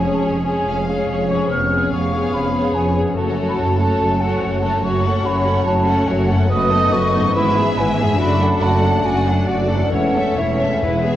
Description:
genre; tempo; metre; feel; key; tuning
classical, dramatic, fast romantic movement for symphony orchestra; 142 BPM; 4/4; rubato; F# minor, A major from 4.8 s; A4 = 442 Hz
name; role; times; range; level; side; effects
warm symphonic violin section; melody; 0.0-11.2 s; F#4 to F#5; -29 LUFS; left 2 dB; none
mellow hollow silver concert flute; second line; 0.0-11.2 s; D5 to E#6; -22 LUFS; equal; none
warm symphonic violin section; second line; 0.0-11.2 s; F#4 to F#5; -26 LUFS; left 3 dB; none
rich studio viola section; accompaniment; 0.0-11.2 s; F#3 to G#4; -24 LUFS; equal; none
warm French horn section; sustained chords; 0.0-11.2 s; E3 to D4; -24 LUFS; left 2 dB; none
concert harp; arpeggios; 0.0-11.2 s; E2 to C#5; -25 LUFS; left 3 dB; none
rich chamber double bass section; bass; 0.0-11.2 s; E1 to G#1; -23 LUFS; right 2 dB; none
warm symphonic cello section; bass; 0.0-11.2 s; E2 to G#2; -23 LUFS; right 2 dB; none
timpani; percussion; 9.9-11.2 s; E2; -28 LUFS; left 2 dB; none
room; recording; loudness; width
wet concert hall reverb, RT60 1.9 s; worn, warbling old tape, cassette tape, warbly pitch drift; -15 LUFS; side -12 dB against mid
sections
0.0-11.2 A section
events
none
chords
0.0 C#/E#; 1.5 C#7/E#; 3.2 F#m; 6.5 B7/F#; 7.4 E/G#; 8.2 D/F#; 9.9 A/E

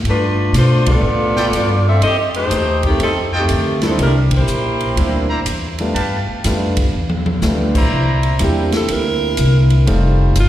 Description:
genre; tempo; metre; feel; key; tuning
jazz, big band swing; 122 BPM; 4/4; swing 67% on 8ths; C mixolydian; A4 = 443 Hz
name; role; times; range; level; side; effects
upright bass; bass; 0.0-10.5 s; F1 to B2; -16 LUFS; equal; none
warm saxophone section; melody; 0.1-5.3 s; Eb3 to E5; -17 LUFS; left 1 dB; slapback echo
swinging big-band drum kit; drums; 0.1-10.5 s; crash cymbal, hi-hat, kick drum, ride cymbal, snare drum, toms; -22 LUFS; equal; none
warm concert grand piano; accompaniment; 0.9-10.5 s; G3 to F4; -22 LUFS; equal; slapback echo
warm trumpet section; stabs; 1.4-8.4 s; E4 to Bb5; -23 LUFS; equal; slapback echo
warm trombone section; sustained chords; 7.9-10.5 s; D3 to F4; -25 LUFS; right 3 dB; stereo widening
clear alto saxophone; melody; 8.4-10.5 s; F4 to Bb4; -21 LUFS; right 1 dB; slapback echo
room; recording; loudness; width
light reverb; live gig heard through the venue's PA, recital hall reverb; -13 LUFS; side -12 dB against mid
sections
0.0-7.9 A section; 7.9-10.5 B section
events
band accent 0.8, 4.2; drum fill 6.9-7.4; alto saxophone solo 7.9-10.5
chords
0.1 G9; 2.0 F9; 4.0 C9; 6.0 G9; 7.9 C9; 9.9 F9

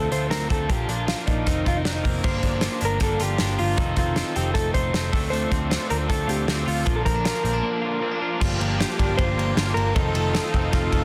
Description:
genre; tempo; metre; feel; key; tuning
jangly indie pop; 156 BPM; 4/4; straight; G minor; A4 = 438 Hz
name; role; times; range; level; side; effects
mellow electric guitar; melody; 0.0-11.0 s; D4 to C5; -30 LUFS; equal; slapback echo
crunchy overdriven guitar; accompaniment; 0.0-11.0 s; G2 to Bb4; -33 LUFS; equal; none
twelve-string electric guitar; arpeggios; 0.0-11.0 s; Eb3 to F4; -32 LUFS; equal; slapback echo
vintage muted picked electric bass; bass; 0.0-11.0 s; F1 to D2; -29 LUFS; equal; none
loose indie drum kit; drums; 0.1-11.0 s; crash cymbal, hi-hat, kick drum, ride cymbal, snare drum; -28 LUFS; equal; none
overdriven combo organ; accompaniment; 5.3-11.0 s; Bb3 to A4; -35 LUFS; equal; none
clear trumpet; second line; 10.3-11.0 s; Eb4 to F4; -36 LUFS; equal; none
room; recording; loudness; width
light reverb, small room reverb; dense, heavily limited modern master; -23 LUFS; mono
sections
0.0-2.2 A section; 2.2-8.4 B section; 8.4-11.0 C section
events
break 7.6-8.4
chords
0.0 Dm7; 0.7 Bb; 1.5 F7sus4; 2.2 Gm7; 3.8 F7; 5.1 Dm7; 6.9 Bb; 8.4 Gm7; 10.0 F7

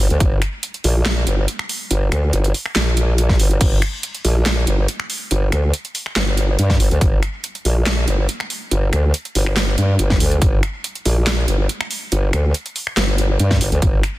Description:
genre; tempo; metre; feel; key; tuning
heavy wobble dubstep; 141 BPM; 4/4; half-time; G minor; A4 = 440 Hz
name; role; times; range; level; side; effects
formant-sweep wobble bass; bass; 0.0-14.0 s; G1 to G2; -16 LUFS; equal; chorus, overdrive
dubstep drum kit; drums; 0.1-14.1 s; crash cymbal, finger snaps, handclaps, hi-hat, snare drum; -22 LUFS; equal; soft clipping on snare
electronic kick drum; drums; 0.2-0.3, 3.3-3.7, 6.7-7.1, 10.1-10.5, 13.5-13.9 s; none; -17 LUFS; equal; none
room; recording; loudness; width
little or no reverb; dense, heavily limited modern master; -16 LUFS; side -17 dB against mid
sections
0.0-14.2 A section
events
none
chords
none

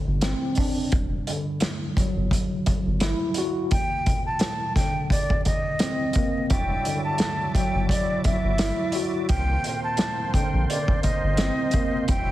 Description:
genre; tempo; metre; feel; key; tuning
hip hop, boom-bap hip-hop; 86 BPM; 4/4; swing 56% on 16ths; unclear; A4 = 440 Hz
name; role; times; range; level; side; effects
mellow tine electric piano; accompaniment; 0.0-12.3 s; Eb2 to F#4; -28 LUFS; equal; medium stereo tremolo, high-pass filter, low-pass filter
round analog bass; bass; 0.1-12.3 s; E1 to C2; -25 LUFS; equal; none
vintage drum kit; drums; 0.2-12.3 s; hi-hat, kick drum, rim click, snare drum; -25 LUFS; equal; none
breathy mellow silver concert flute; melody; 3.7-12.3 s; D5 to A5; -28 LUFS; equal; high-pass filter, low-pass filter, digital delay
overdriven tonewheel organ; sustained chords; 6.5-12.3 s; F#3 to D5; -34 LUFS; right 2 dB; chorus vibrato, wide subtle chorus, high-pass filter, low-pass filter
room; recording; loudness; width
light reverb, small room ambience; heavily compressed radio sound, multiband compression, vinyl crackle; -22 LUFS; side -14 dB against mid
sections
0.0-12.3 A section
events
break 0.0-3.7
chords
0.0 Cm9; 0.9 Em9; 3.7 Cm9; 6.5 Em9; 9.3 Cm9

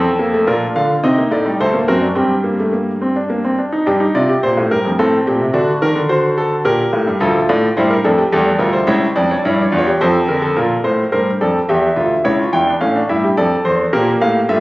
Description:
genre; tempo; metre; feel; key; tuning
classical, baroque-style 4-part fugue for grand piano; 107 BPM; 3/4; straight; G minor; A4 = 440 Hz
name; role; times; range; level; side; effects
clear concert grand piano; solo; 0.0-14.6 s; C#2 to G5; -13 LUFS; equal; none
room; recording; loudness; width
moderate recital hall reverb, RT60 1.4 s; recorded on a phone in the room, club reverb, compression; -13 LUFS; side -20 dB against mid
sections
0.5-3.9 A section; 3.9-10.6 B section; 10.6-14.6 A section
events
none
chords
0.5 Bb; 1.0 Adim/C; 1.6 D7; 2.2 Gm; 5.0 Am7; 5.5 D7; 6.7 Gm/Bb; 7.2 Dm; 8.9 C#dim; 10.0 Dm/F; 10.6 Bb; 11.7 Dmadd9; 12.2 A/C#; 13.4 Dm/F; 13.9 Bbmaj7(no3)

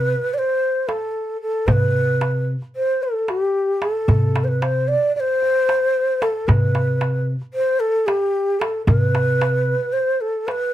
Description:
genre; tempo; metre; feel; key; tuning
Turkish makam ensemble; 225 BPM (eighths); 9/8; straight; unclear; A4 = 439 Hz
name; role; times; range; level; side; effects
breathy mellow ney; melody; 0.0-10.7 s; G4 to D5; -19 LUFS; equal; none
upright bass; bass; 0.0-9.7 s; C3; -20 LUFS; equal; none
darbuka; percussion; 0.2-10.6 s; none; -20 LUFS; equal; none
room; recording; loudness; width
moderate small room reverb, RT60 0.5 s; none; -17 LUFS; side -12 dB against mid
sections
0.0-10.7 A section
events
none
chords
none

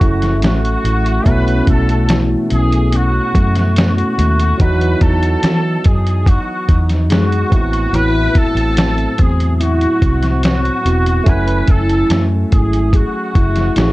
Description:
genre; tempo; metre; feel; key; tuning
indie pop, bedroom pop; 72 BPM; 4/4; straight; E major; A4 = 440 Hz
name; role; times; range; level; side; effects
clear trumpet; melody; 0.0-13.9 s; F#4 to B4; -21 LUFS; equal; ensemble chorus, plate reverb
barky tine electric piano; accompaniment; 0.0-13.9 s; F#3 to G#5; -22 LUFS; right 3 dB; overdrive, plate reverb
fingerpicked steel-string acoustic guitar; accompaniment; 0.0-13.9 s; A2 to G#4; -20 LUFS; left 2 dB; analog chorus, warbly pitch drift, plate reverb
vintage muted fingered electric bass; bass; 0.0-13.9 s; E1 to E3; -16 LUFS; equal; none
lo-fi sampler-style drum kit; drums; 0.0-13.9 s; hi-hat, kick drum, snare drum; -15 LUFS; equal; none
room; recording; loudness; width
light reverb; cassette tape; -12 LUFS; side -18 dB against mid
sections
0.0-13.9 A section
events
none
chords
0.0 F#m9; 1.3 B9sus4; 4.6 Emaj9; 7.5 Am6; 11.3 F#m9

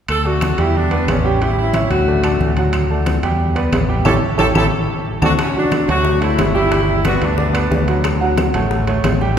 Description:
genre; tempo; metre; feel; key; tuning
latin, salsa; 181 BPM; 4/4; straight; D major; A4 = 440 Hz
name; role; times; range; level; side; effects
clear horn section; melody; 0.1-7.7 s; A3 to A4; -21 LUFS; left 1 dB; none
fingered electric bass; bass; 0.1-9.4 s; G1 to E2; -19 LUFS; left 1 dB; none
claves; percussion; 0.1-9.2 s; none; -33 LUFS; left 7 dB; none
congas; percussion; 0.1-9.2 s; none; -22 LUFS; left 2 dB; none
timbales; percussion; 0.1-9.2 s; none; -25 LUFS; right 3 dB; none
bright baby grand piano; accompaniment; 0.2-9.3 s; F#3 to G5; -20 LUFS; right 3 dB; none
bongos; percussion; 5.4-9.4 s; none; -26 LUFS; left 6 dB; none
room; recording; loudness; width
wet church reverb, RT60 3.3 s; recorded in a church or concert hall; -14 LUFS; side -8 dB against mid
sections
0.1-5.4 A section; 5.4-9.4 B section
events
band accent 4.1-5.4; drum fill 4.4-5.4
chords
0.1 D; 0.7 Em7; 1.4 A7; 2.1 D; 3.4 Em7; 4.1 A7; 4.7 D; 5.4 Dmaj7; 6.7 Gmaj7; 8.0 Dmaj7

